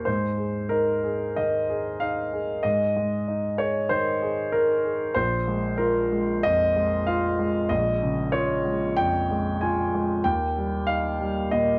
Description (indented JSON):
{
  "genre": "neoclassical minimalist piano",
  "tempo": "94 BPM",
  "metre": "4/4",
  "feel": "rubato",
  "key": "Bb dorian",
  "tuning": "A4 = 440 Hz",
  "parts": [
    { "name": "warm grand piano", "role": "solo", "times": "0.0-11.8 s", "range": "Bb1 to Ab5", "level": "-25 LUFS", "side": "equal", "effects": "none" }
  ],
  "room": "wet studio reverb, RT60 0.5 s",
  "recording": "dark, warm production",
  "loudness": "-25 LUFS",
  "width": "mono",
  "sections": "0.0-11.8 A section",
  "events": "none",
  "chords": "0.1 Ab; 5.2 Bbm7; 10.3 Eb"
}